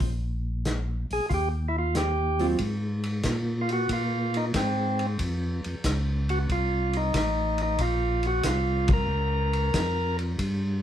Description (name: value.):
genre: soul jazz organ trio.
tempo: 92 BPM.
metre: 4/4.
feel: swing 69% on 8ths.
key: Ab major.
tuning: A4 = 440 Hz.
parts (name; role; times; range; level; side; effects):
tonewheel organ; bass; 0.0-10.8 s; A1 to Bb2; -27 LUFS; equal; overdrive, chorus vibrato, stopped rotary speaker.
warm soul drum kit; drums; 0.0-10.6 s; hi-hat, kick drum, ride cymbal, snare drum; -31 LUFS; equal; none.
percussive tonewheel organ; melody; 1.1-10.2 s; C4 to Bb4; -28 LUFS; right 1 dB; overdrive, stopped rotary speaker.
archtop guitar, miked and amplified; accompaniment; 2.4-2.6 s; Gb3 to F4; -28 LUFS; right 3 dB; none.
room: moderate studio reverb, RT60 0.7 s.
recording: heard from further back in the room.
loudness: -24 LUFS.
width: side -10 dB against mid.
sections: 0.0-2.6 A section; 2.6-10.8 A section.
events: band accent 8.8-9.1.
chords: 0.0 Bb5; 1.3 Eb69; 2.6 Absus2; 5.2 F; 7.8 Bbmadd9.